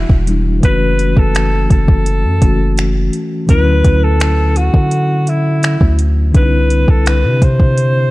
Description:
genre	contemporary R&B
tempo	84 BPM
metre	4/4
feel	straight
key	D major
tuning	A4 = 440 Hz
part	breathy alto saxophone	melody	0.0-8.1 s	E4 to C5	-19 LUFS	equal	none
part	tine electric piano	accompaniment	0.0-8.1 s	D3 to F#4	-19 LUFS	left 2 dB	medium tremolo
part	long sustained 808-style bass	bass	0.0-8.1 s	E1 to D3	-14 LUFS	equal	none
part	smooth R&B drum kit	drums	0.1-7.9 s	finger snaps, hi-hat, kick drum	-13 LUFS	equal	overdrive
room	digital ambience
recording	dark, warm production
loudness	-10 LUFS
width	side -19 dB against mid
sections	0.0-8.1 A section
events	none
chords	0.0 Em9; 0.6 F#m7; 3.5 Dmaj9; 6.3 Cadd9

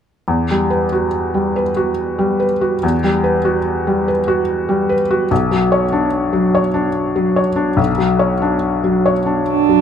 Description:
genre	neoclassical piano and strings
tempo	72 BPM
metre	3/4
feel	rubato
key	unclear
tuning	A4 = 441 Hz
part	felt-muted upright piano	accompaniment	0.3-9.8 s	B1 to C#5	-14 LUFS	left 1 dB	none
part	muted cello	second line	9.5-9.8 s	D4	-12 LUFS	right 17 dB	none
room	light reverb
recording	close, detailed microphones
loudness	-14 LUFS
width	side -8 dB against mid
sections	0.3-9.8 A section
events	none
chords	0.3 Emadd9; 5.3 Bmadd9

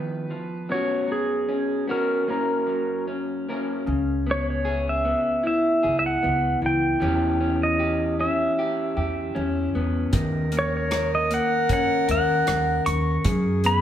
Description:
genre	acoustic folk-pop ballad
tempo	77 BPM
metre	4/4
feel	straight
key	unclear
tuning	A4 = 440 Hz
part	pedal steel guitar	melody	0.0-13.8 s	G#4 to C#6	-24 LUFS	right 1 dB	none
part	electric guitar through a small old amp	accompaniment	0.0-13.8 s	F#2 to A#4	-26 LUFS	left 1 dB	none
part	upright bass	bass	3.9-13.8 s	C#2 to F#2	-27 LUFS	right 1 dB	none
part	clear clarinet	second line	10.1-13.8 s	G#4 to A#4	-27 LUFS	left 5 dB	none
part	natural country drum kit	drums	10.1-13.8 s	hi-hat, kick drum, rim click	-27 LUFS	right 1 dB	none
room	wet large studio reverb, RT60 1.3 s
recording	heard from further back in the room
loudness	-21 LUFS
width	side -10 dB against mid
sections	0.0-3.9 A section; 3.9-13.8 B section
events	none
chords	0.0 C#7 (rootless); 0.7 F#sus4; 2.3 F#; 3.9 C#m7; 7.0 Em6; 10.1 D#m7; 13.2 B5/F#

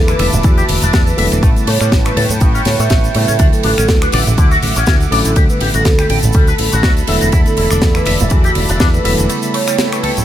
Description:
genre	nu-disco, nu disco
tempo	122 BPM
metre	4/4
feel	swing 55% on 16ths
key	unclear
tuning	A4 = 440 Hz
part	tine electric piano	accompaniment	0.0-10.2 s	C#3 to E4	-21 LUFS	right 1 dB	medium tremolo
part	lush unison pad	sustained chords	0.0-10.2 s	A4 to D6	-24 LUFS	right 1 dB	chorus, sidechain pumping
part	fingered electric bass with an envelope filter	bass	0.0-9.3 s	E1 to A2	-17 LUFS	equal	tube saturation
part	vibraphone with medium mallets	melody	0.1-10.1 s	F#4 to E5	-21 LUFS	right 3 dB	diffuse ambient delay
part	electric guitar with an envelope filter	riff	0.1-10.1 s	A2 to G5	-21 LUFS	left 4 dB	wide subtle chorus
part	tight funk drum kit	drums	0.1-10.2 s	finger snaps, hi-hat, ride cymbal, shaker, snare drum	-19 LUFS	left 1 dB	none
part	congas	percussion	0.2-10.2 s	none	-22 LUFS	right 2 dB	none
part	electronic kick drum	drums	0.4-8.9 s	none	-12 LUFS	equal	none
room	light reverb, studio reverb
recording	none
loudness	-10 LUFS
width	side -12 dB against mid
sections	0.0-10.2 A section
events	break 9.3-10.2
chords	0.0 E7sus4; 1.4 A9; 3.4 Dmaj9; 5.4 Gmaj9; 7.1 E7sus4; 9.3 A9

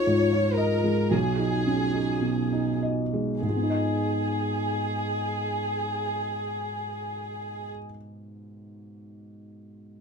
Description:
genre	neoclassical piano and strings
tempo	48-58 BPM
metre	4/4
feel	rubato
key	G# dorian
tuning	A4 = 440 Hz
part	warm chamber violin section	melody	0.0-7.7 s	G#4 to C#5	-30 LUFS	equal	none
part	felt-muted upright piano	accompaniment	0.0-10.0 s	B1 to D#5	-27 LUFS	equal	none
room	light reverb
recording	minimal, uncompressed stereo recording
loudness	-24 LUFS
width	side -6 dB against mid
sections	0.0-3.4 A section; 3.4-8.2 B section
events	slowing down 0.0-3.4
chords	0.0 C#add9; 1.1 G#m/B; 3.4 G#m

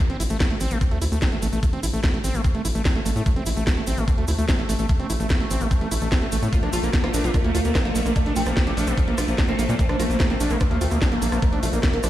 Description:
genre	psychedelic trance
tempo	147 BPM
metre	4/4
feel	straight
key	A phrygian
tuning	A4 = 441 Hz
part	swarming drone	sustained chords	1.6-12.1 s	A3	-30 LUFS	right 2 dB	built-in reverb, phaser, sidechain pumping
part	overdriven acid bass	riff	0.0-12.1 s	A3 to F4	-28 LUFS	equal	distortion, auto-pan, sidechain pumping, tape echo
part	drum and bass drum kit	drums	0.0-12.1 s	hi-hat, rim click, snare drum	-29 LUFS	equal	none
part	electronic kick drum	drums	0.0-11.9 s	none	-21 LUFS	equal	none
part	cabasa	percussion	0.0-12.1 s	none	-36 LUFS	right 4 dB	none
part	round analog bass	bass	0.1-12.1 s	A1 to Bb2	-25 LUFS	equal	none
part	oud	melody	6.5-12.1 s	Bb2 to F4	-28 LUFS	equal	phaser, sidechain pumping, digital delay
room	light reverb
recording	played on a big sound system in a bare room, stone room reverb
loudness	-19 LUFS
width	side -13 dB against mid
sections	0.0-12.1 A section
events	none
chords	0.0 A5; 6.5 Bb5

